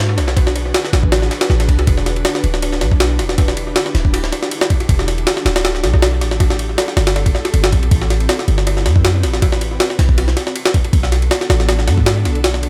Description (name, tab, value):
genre	drum and bass, jungle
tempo	159 BPM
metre	4/4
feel	swing 53% on 16ths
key	E minor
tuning	A4 = 439 Hz
part	ethereal airy pad	sustained chords	0.0-12.7 s	B3 to B4	-28 LUFS	equal	ensemble chorus, built-in reverb, tremolo
part	warm 808-style bass	bass	0.0-12.7 s	D1 to G#2	-19 LUFS	equal	none
part	jungle sampler-style drum kit	drums	0.2-12.7 s	kick drum, ride cymbal, snare drum	-18 LUFS	equal	studio ambience, tape echo
room	digital ambience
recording	echo-heavy mix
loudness	-15 LUFS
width	mono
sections	0.0-12.7 A section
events	none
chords	0.0 Bm7; 1.9 Em7; 6.4 Am7; 10.2 Bm7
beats	| 0.36 0.74 1.12 1.50 | 1.87 2.25 2.63 3.00 | 3.38 3.76 4.14 4.51 | 4.89 5.27 5.65 6.02 | 6.40 6.78 7.16 7.53 | 7.91 8.29 8.67 9.04 | 9.42 9.80 10.18 10.55 | 10.93 11.31 11.69 12.06 | 12.44